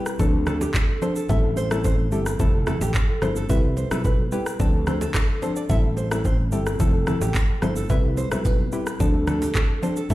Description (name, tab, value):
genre	afrobeats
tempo	109 BPM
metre	4/4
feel	straight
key	unclear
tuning	A4 = 440 Hz
part	soft round pluck	accompaniment	0.0-10.1 s	F3 to B4	-26 LUFS	left 2 dB	chorus
part	nylon-string guitar	riff	0.0-10.1 s	G4 to E5	-30 LUFS	right 4 dB	digital delay
part	afro-pop drum kit	drums	0.1-10.1 s	handclaps, kick drum, rim click, shaker	-23 LUFS	equal	none
part	sustaining fretless electric bass	bass	0.2-10.1 s	F1 to D2	-25 LUFS	equal	none
part	congas and bongos	percussion	0.2-10.1 s	none	-32 LUFS	right 2 dB	none
room	little or no reverb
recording	played on a big sound system in a bare room, large studio reverb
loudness	-20 LUFS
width	side -16 dB against mid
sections	0.0-10.1 A section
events	none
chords	0.2 Dm7; 1.3 Am7; 2.4 Fmaj7; 3.5 Cmaj7; 4.6 Dm7; 5.7 Am7; 6.8 Fmaj7; 7.9 Cmaj7; 9.0 Dm7